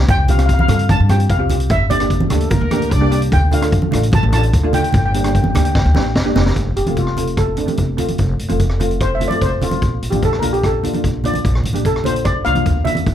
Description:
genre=calypso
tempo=148 BPM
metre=4/4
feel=straight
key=F major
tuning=A4 = 442 Hz
part: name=steel pan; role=accompaniment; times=0.0-13.1 s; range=A3 to A4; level=-22 LUFS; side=equal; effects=none
part: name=upright bass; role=bass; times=0.0-13.1 s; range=F1 to G2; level=-18 LUFS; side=equal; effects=none
part: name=steel pan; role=melody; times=0.1-13.0 s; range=F4 to A5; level=-21 LUFS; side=left 1 dB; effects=plate reverb
part: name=street-band drum kit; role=drums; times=0.1-13.1 s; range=hi-hat, kick drum, rim click, snare drum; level=-19 LUFS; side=equal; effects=none
part: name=congas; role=percussion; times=0.3-13.1 s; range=none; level=-23 LUFS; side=right 2 dB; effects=none
part: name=warm horn section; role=second line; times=2.3-3.2 s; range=A3 to D5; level=-22 LUFS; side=equal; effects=none
room=light reverb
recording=close, detailed microphones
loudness=-14 LUFS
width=side -10 dB against mid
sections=0.0-6.6 A section; 6.6-13.1 B section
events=drum fill 5.8-6.6; steel pan solo 6.6-13.1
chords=0.1 Csus4; 1.7 Gm; 3.3 Dm; 4.9 Gm; 6.6 F; 9.8 Bbmaj7

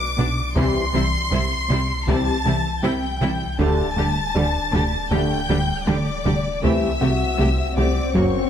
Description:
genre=cinematic, hybrid orchestral and electronic film score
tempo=79 BPM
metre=4/4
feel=straight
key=unclear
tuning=A4 = 440 Hz
part: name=warm symphonic violin section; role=melody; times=0.0-8.5 s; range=C#6 to D7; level=-30 LUFS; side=left 3 dB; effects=none
part: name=warm symphonic violin section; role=second line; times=0.0-8.5 s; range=C#5 to D6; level=-27 LUFS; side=left 2 dB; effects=none
part: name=soft round pluck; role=arpeggios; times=0.0-8.4 s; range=C3 to G4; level=-30 LUFS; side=left 2 dB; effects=chorus
part: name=plucky analog bass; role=riff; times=0.0-8.4 s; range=C2 to D3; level=-26 LUFS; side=right 1 dB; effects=none
part: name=punchy sub bass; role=bass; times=0.0-8.5 s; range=D1 to C2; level=-29 LUFS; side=left 1 dB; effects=none
part: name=warm concert grand piano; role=texture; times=0.0-8.5 s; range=D4 to F#5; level=-34 LUFS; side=left 2 dB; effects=tape echo
part: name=bright symphonic viola section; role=accompaniment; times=0.2-8.2 s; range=G3 to G4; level=-30 LUFS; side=right 1 dB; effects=none
part: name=dark symphonic cello section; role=bass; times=0.2-8.2 s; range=F#2 to D3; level=-27 LUFS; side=right 2 dB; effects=none
part: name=rich symphonic double bass section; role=bass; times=0.2-8.2 s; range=F#1 to D2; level=-28 LUFS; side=right 2 dB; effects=none
part: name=solo taiko drums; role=drums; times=0.2-8.5 s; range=none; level=-28 LUFS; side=left 1 dB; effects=none
part: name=dark French horn section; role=sustained chords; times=0.6-8.4 s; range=C4 to G4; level=-28 LUFS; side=left 6 dB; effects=none
part: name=warm trombone section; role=sustained chords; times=0.6-8.4 s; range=D3 to A#3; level=-30 LUFS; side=right 4 dB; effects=none
part: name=swell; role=sound effects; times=7.2-8.5 s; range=none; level=-28 LUFS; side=left 4 dB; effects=none
room=moderate scoring stage reverb, RT60 1.6 s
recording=none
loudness=-18 LUFS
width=side -9 dB against mid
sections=0.0-8.5 A section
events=swell 7.2-8.5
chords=0.0 Bm; 0.6 C; 3.6 Dsus4; 6.6 Am7/C

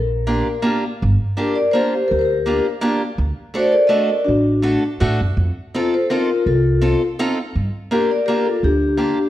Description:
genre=musette waltz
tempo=165 BPM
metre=3/4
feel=straight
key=G minor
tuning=A4 = 440 Hz
part: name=vibraphone with medium hard mallets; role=melody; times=0.0-9.3 s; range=D4 to Eb5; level=-18 LUFS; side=left 2 dB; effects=none
part: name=upright bass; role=bass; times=0.0-9.1 s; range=G1 to A2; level=-19 LUFS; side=right 1 dB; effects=none
part: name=picked steel-string acoustic guitar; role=accompaniment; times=0.3-9.2 s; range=A3 to A4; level=-22 LUFS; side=right 1 dB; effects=none
room=moderate recital hall reverb, RT60 1.4 s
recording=worn, warbling old tape, cassette tape, warbly pitch drift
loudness=-16 LUFS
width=side -13 dB against mid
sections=0.0-1.0 A section; 1.0-9.3 B section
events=none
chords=0.0 Bb6; 1.0 Gm7; 3.2 D; 5.4 F7; 7.5 Gm7

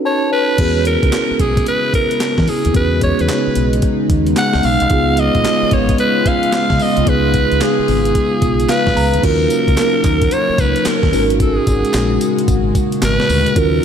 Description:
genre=R&B, new jack swing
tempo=111 BPM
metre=4/4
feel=swing 64% on 16ths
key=unclear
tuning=A4 = 437 Hz
part: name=mellow tine electric piano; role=accompaniment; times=0.0-13.8 s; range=B3 to Bb5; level=-20 LUFS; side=equal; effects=medium stereo tremolo
part: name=breathy alto saxophone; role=melody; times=0.1-13.8 s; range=Ab4 to Gb5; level=-17 LUFS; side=right 1 dB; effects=ping-pong delay
part: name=chorused pulse-width pad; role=sustained chords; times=0.6-13.8 s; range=Bb2 to Gb4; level=-19 LUFS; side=left 1 dB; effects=none
part: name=deep dub fingered electric bass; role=bass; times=0.6-13.8 s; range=Ab1 to E3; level=-18 LUFS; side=equal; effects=none
part: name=breakbeat sampler-style drum kit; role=drums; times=0.6-13.7 s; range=crash cymbal, handclaps, hi-hat, kick drum, snare drum, tambourine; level=-20 LUFS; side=equal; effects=none
part: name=group handclap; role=percussion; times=1.1-13.2 s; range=none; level=-34 LUFS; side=right 4 dB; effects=none
room=moderate plate reverb, RT60 2.8 s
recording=dreamy mix soaked in reverb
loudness=-12 LUFS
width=side -8 dB against mid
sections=0.6-9.2 A section; 9.2-13.8 B section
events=break 0.0-0.6; tine electric piano fill 0.0-0.6, 8.4-9.2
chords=0.0 B9/C#; 0.6 E6; 4.9 Db7; 9.2 Ebm7; 11.1 Ab9sus4

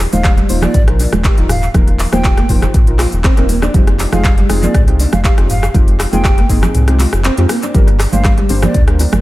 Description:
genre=afro house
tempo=120 BPM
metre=4/4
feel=straight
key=unclear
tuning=A4 = 443 Hz
part: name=deep mellow chord stab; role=stabs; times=0.0-9.2 s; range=F3 to C5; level=-21 LUFS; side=left 2 dB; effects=chorus, cassette tape, sidechain pumping, dub echo
part: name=round analog bass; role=bass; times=0.0-9.2 s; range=Eb1 to F2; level=-15 LUFS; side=equal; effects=sidechain pumping
part: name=breathy hollow jazz flute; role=melody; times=0.1-8.8 s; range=D5 to G5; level=-25 LUFS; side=right 1 dB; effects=dub echo
part: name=afro-pop drum kit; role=drums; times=0.1-9.2 s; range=handclaps, hi-hat, rim click, shaker, toms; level=-19 LUFS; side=equal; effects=dub echo
part: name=congas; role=percussion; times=0.1-9.2 s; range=none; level=-20 LUFS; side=right 4 dB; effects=none
part: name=nylon-string guitar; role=arpeggios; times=0.2-9.1 s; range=G3 to G4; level=-21 LUFS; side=right 1 dB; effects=vintage 12-bit sampler grit, sidechain pumping, dub echo
part: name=electronic kick drum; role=drums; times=0.2-8.9 s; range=none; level=-12 LUFS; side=equal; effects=none
part: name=bongos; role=percussion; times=8.5-9.1 s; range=none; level=-25 LUFS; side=left 3 dB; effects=none
room=small room ambience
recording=echo-heavy mix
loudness=-10 LUFS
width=side -17 dB against mid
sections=0.0-9.2 A section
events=kick drops out 6.7-7.7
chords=0.0 Ebsus2; 3.7 Fm7; 7.7 Gm

